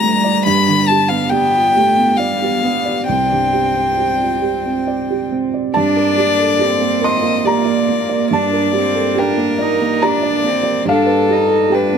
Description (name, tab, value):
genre	neoclassical piano and strings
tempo	69 BPM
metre	3/4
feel	uneven beats, rubato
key	G minor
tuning	A4 = 441 Hz
part	rich violin	melody	0.0-12.0 s	A4 to B5	-16 LUFS	left 4 dB	none
part	warm cello	second line	0.0-12.0 s	G3 to Eb4	-21 LUFS	right 5 dB	none
part	felt-muted upright piano	accompaniment	0.0-12.0 s	C2 to C6	-18 LUFS	right 4 dB	none
part	warbly tape-like pad	sustained chords	0.0-12.0 s	G3 to D5	-24 LUFS	right 2 dB	chorus, built-in reverb
room	light reverb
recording	none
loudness	-13 LUFS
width	side -7 dB against mid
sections	0.0-5.8 A section; 5.8-12.0 B section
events	none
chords	0.5 G; 3.1 Csus2; 5.8 Gmadd9; 10.9 G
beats	| 0.46 1.31 2.19 | 3.09 3.99 4.88 | 5.76 6.61 7.46 | 8.32 9.18 10.03 | 10.88 11.72